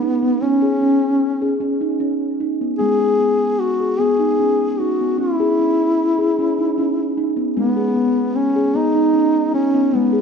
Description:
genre	world meditative, meditative tuned percussion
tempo	50 BPM (dotted quarters)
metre	6/8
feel	straight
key	G# minor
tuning	A4 = 440 Hz
part	dark duduk	melody	0.0-10.2 s	B3 to G#4	-18 LUFS	left 1 dB	ping-pong delay
part	steel tongue drum	arpeggios	0.0-10.2 s	G#3 to G#4	-19 LUFS	equal	ping-pong delay
room	moderate echo chamber reverb, RT60 1.3 s, small room ambience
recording	none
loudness	-15 LUFS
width	side -6 dB against mid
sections	0.0-10.2 A section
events	none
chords	0.4 C#5; 2.8 G#m; 5.2 C#m; 7.6 G#m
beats	| 0.42 1.61 | 2.80 3.99 | 5.18 6.37 | 7.56 8.75 | 9.94

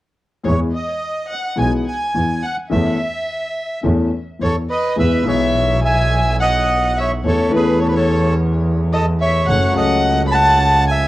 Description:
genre	tango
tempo	106 BPM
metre	4/4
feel	rubato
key	E major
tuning	A4 = 440 Hz
part	warm violin	second line	0.4-11.1 s	B4 to B5	-23 LUFS	left 1 dB	tape echo
part	clear concert grand piano	accompaniment	0.4-11.1 s	B1 to A4	-20 LUFS	left 2 dB	none
part	bandoneon	melody	0.5-11.1 s	G#4 to B5	-19 LUFS	right 1 dB	none
part	rich double bass	bass	0.5-11.1 s	F#1 to E2	-19 LUFS	right 1 dB	none
room	moderate club reverb, RT60 0.6 s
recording	worn, warbling old tape, cassette tape, warbly pitch drift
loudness	-15 LUFS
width	side -16 dB against mid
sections	0.5-5.0 A section; 5.0-11.1 B section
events	none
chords	0.5 E; 2.7 A/E; 5.0 E; 7.2 A/E; 9.5 F#m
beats	| 0.45 1.02 1.59 2.16 | 2.72 3.28 3.84 4.41 | 4.97 5.54 6.11 6.67 | 7.24 7.80 8.36 8.92 | 9.48 10.04 10.60

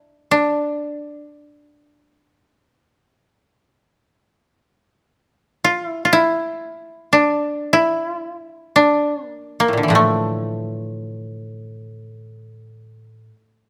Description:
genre	japanese traditional, Japanese chamber music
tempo	free time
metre	none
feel	none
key	D hirajoshi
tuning	A4 = 441 Hz
part	koto	melody	0.0-13.7 s	A2 to F4	-19 LUFS	equal	none
part	koto	accompaniment	9.9-13.3 s	A2	-28 LUFS	equal	none
room	light reverb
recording	close, detailed microphones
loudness	-19 LUFS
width	mono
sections	0.0-13.7 A section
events	none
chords	none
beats	free time

